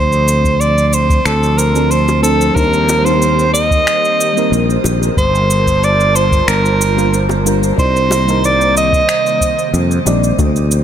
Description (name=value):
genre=sunset chillout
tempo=92 BPM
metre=4/4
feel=straight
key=C dorian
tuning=A4 = 440 Hz
part: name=warm soprano saxophone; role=melody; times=0.0-9.7 s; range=A4 to Eb5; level=-14 LUFS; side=right 1 dB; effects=digital delay, shimmer reverb
part: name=airy breathy pad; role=sustained chords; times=0.0-10.8 s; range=C3 to A5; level=-21 LUFS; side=right 2 dB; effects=chorus, shimmer reverb
part: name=sustaining fretless electric bass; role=bass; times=0.0-10.8 s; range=G1 to F2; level=-15 LUFS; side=equal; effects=none
part: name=electronic cabasa and finger snaps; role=drums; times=0.1-10.8 s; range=none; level=-20 LUFS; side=equal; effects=overdrive, small room ambience
part: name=electronic kick drum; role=drums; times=0.4-10.5 s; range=none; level=-17 LUFS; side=equal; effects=small room ambience
part: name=mellow FM electric piano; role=accompaniment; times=1.7-10.4 s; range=F3 to D5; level=-21 LUFS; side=moving between left 3 dB and right 4 dB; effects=chorus, phaser, auto-pan, tape echo, shimmer reverb
part: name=bongos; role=percussion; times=2.1-10.2 s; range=none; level=-24 LUFS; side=left 2 dB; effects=none
part: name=soft round pluck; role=arpeggios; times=10.4-10.6 s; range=A3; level=-28 LUFS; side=left 8 dB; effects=none
room=light reverb, digital ambience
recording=none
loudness=-10 LUFS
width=side -9 dB against mid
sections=0.0-10.8 A section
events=none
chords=0.0 Dm7; 2.6 Cm9/Eb; 5.2 Gm7; 7.8 Cm9